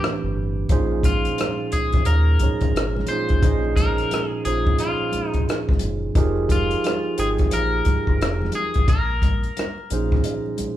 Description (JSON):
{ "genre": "R&B, neo-soul", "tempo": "88 BPM", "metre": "4/4", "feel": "swing 63% on 16ths", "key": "Bb minor", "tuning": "A4 = 440 Hz", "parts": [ { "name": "electric guitar at the edge of break-up", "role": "melody", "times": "0.0-10.8 s", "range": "F4 to C5", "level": "-27 LUFS", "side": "left 2 dB", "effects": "spring reverb" }, { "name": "overdriven tine electric piano", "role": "accompaniment", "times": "0.0-10.8 s", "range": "A2 to G5", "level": "-24 LUFS", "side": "right 3 dB", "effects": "none" }, { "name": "compact cocktail drum kit", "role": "drums", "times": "0.0-10.8 s", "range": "hi-hat, kick drum, rim click", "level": "-21 LUFS", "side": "equal", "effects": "none" }, { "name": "rubbery square bass", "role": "bass", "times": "0.2-10.7 s", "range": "F1 to Eb2", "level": "-24 LUFS", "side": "equal", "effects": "none" }, { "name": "congas", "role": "percussion", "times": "0.7-10.8 s", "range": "none", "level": "-36 LUFS", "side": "left 1 dB", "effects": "none" } ], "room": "moderate large studio reverb, RT60 1.0 s", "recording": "band playing live in one room", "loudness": "-19 LUFS", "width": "side -13 dB against mid", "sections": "0.0-10.8 A section", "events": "break 0.0-0.7", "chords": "0.0 Am11; 0.7 Bbm11; 6.2 Fm11; 8.9 Bbm11" }